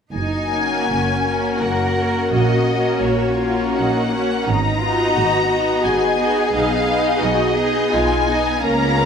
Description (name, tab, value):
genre	classical, slow romantic movement for symphony orchestra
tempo	75-90 BPM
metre	3/4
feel	rubato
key	F# major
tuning	A4 = 441 Hz
part	rich studio violin section	melody	0.1-9.1 s	C#5 to A#5	-22 LUFS	left 4 dB	none
part	dark French horn section	sustained chords	0.1-9.1 s	A#3 to G#4	-23 LUFS	left 2 dB	none
part	rich symphonic cello section	bass	0.1-9.1 s	C#4 to A#4	-24 LUFS	right 1 dB	none
part	rich symphonic double bass section	bass	0.1-9.1 s	F#1 to C#2	-24 LUFS	right 3 dB	none
part	warm symphonic violin section	second line	0.5-9.1 s	F#4 to E#5	-24 LUFS	left 1 dB	none
part	clear symphonic viola section	accompaniment	0.5-9.1 s	A#3 to D#4	-24 LUFS	right 1 dB	none
room	wet recital hall reverb, RT60 1.6 s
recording	none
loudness	-16 LUFS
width	side -7 dB against mid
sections	0.1-9.1 A section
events	none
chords	0.1 F#; 2.3 F#/A#; 4.5 G#m7; 6.5 G#m/B